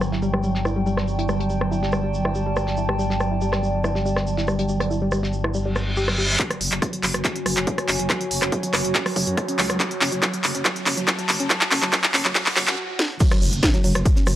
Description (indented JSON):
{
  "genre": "driving peak-time techno",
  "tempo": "141 BPM",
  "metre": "4/4",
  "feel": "straight",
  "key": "F# minor",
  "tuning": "A4 = 440 Hz",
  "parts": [
    { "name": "growling FM bass", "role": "bass", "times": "0.0-14.4 s", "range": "F#1 to F#2", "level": "-26 LUFS", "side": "equal", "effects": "tube saturation, sidechain pumping" },
    { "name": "swarming drone", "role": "drone", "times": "0.0-12.8 s", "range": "F#3", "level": "-31 LUFS", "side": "right 2 dB", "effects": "built-in reverb, sidechain pumping" },
    { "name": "damped 70s drum kit", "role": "drums", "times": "0.0-6.3, 13.2-14.4 s", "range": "hi-hat, shaker, snare drum", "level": "-37 LUFS", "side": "equal", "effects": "sidechain pumping on hats, high-pass filter on hats, low-pass filter on hats, high-pass filter on snare, low-pass filter on snare, sidechain pumping on perc, high-pass filter on perc, low-pass filter on perc, high-pass filter on room, low-pass filter on room" },
    { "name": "techno drum kit", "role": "drums", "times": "0.0-14.4 s", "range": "crash cymbal, handclaps, hi-hat, ride cymbal, rim click, snare drum", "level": "-22 LUFS", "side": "equal", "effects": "low-pass filter on snare, sidechain pumping on hats, low-pass filter on hats, sidechain pumping on cymbals, low-pass filter on cymbals, low-pass filter on room" },
    { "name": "warbly tape-like pad", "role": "texture", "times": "0.0-14.4 s", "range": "F#4 to A5", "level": "-29 LUFS", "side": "right 1 dB", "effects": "chorus, built-in reverb, sidechain pumping" },
    { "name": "woody wave-folded pluck", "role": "riff", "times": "0.1-14.3 s", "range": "F#3 to G4", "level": "-28 LUFS", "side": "equal", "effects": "chorus, overdrive, sidechain pumping, analog delay" },
    { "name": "reverse cymbal, riser, swell and impact", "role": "sound effects", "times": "5.8-14.4 s", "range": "none", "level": "-29 LUFS", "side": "equal", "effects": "none" },
    { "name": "electronic kick drum", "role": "drums", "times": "6.4-14.1 s", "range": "none", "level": "-22 LUFS", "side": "equal", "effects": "high-pass filter on kick, high-pass filter on room" }
  ],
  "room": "light reverb",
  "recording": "dry, gritty hardware recording, high-pass filter",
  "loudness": "-19 LUFS",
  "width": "side -13 dB against mid",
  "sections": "0.0-6.4 A section; 6.4-13.2 B section; 13.2-14.4 C section",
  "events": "reverse cymbal 5.8-6.4; build-up 6.4-13.2; drum fill 6.4-12.8, 13.0; filter sweep on synth arpeggio sound 6.4-13.2; swell 12.4-13.2; stop 12.8-13.2; drop 13.2-14.4; impact 13.2-14.4",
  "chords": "0.0 G5; 6.4 F#m"
}